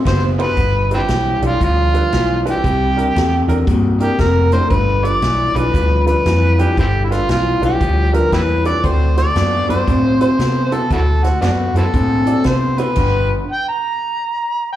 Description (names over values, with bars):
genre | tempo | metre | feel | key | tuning
electric blues shuffle | 116 BPM | 4/4 | swing 65% on 8ths | G mixolydian | A4 = 440 Hz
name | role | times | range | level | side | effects
electric guitar through a small old amp | riff | 0.0-13.4 s | G2 to C4 | -20 LUFS | left 3 dB | lush chorus, slapback echo
overdriven harmonica | melody | 0.1-14.8 s | B3 to Bb5 | -19 LUFS | equal | slapback echo
vintage muted fingered electric bass | bass | 0.1-13.3 s | F1 to C3 | -17 LUFS | equal | none
swinging big-band drum kit | drums | 0.1-13.1 s | crash cymbal, hi-hat, kick drum, ride cymbal, snare drum | -23 LUFS | equal | none
warm upright piano | accompaniment | 0.4-12.9 s | D4 to D5 | -26 LUFS | right 5 dB | slapback echo
bright horn section | stabs | 8.8-13.3 s | B3 to D5 | -28 LUFS | right 1 dB | slapback echo
room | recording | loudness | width
studio reverb | live gig heard through the venue's PA, club reverb | -13 LUFS | side -12 dB against mid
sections
0.6-14.8 A section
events
stop 13.0-14.8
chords
0.0 D7; 0.6 G7; 2.6 C7; 4.7 G7; 8.8 D7; 13.0 G7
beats
0.06 | 0.57 1.09 1.60 2.12 | 2.64 3.15 3.67 4.19 | 4.71 5.22 5.74 6.26 | 6.77 7.29 7.81 8.32 | 8.84 9.36 9.88 10.39 | 10.91 11.43 11.94 12.46 | 12.98 13.50 14.01 14.53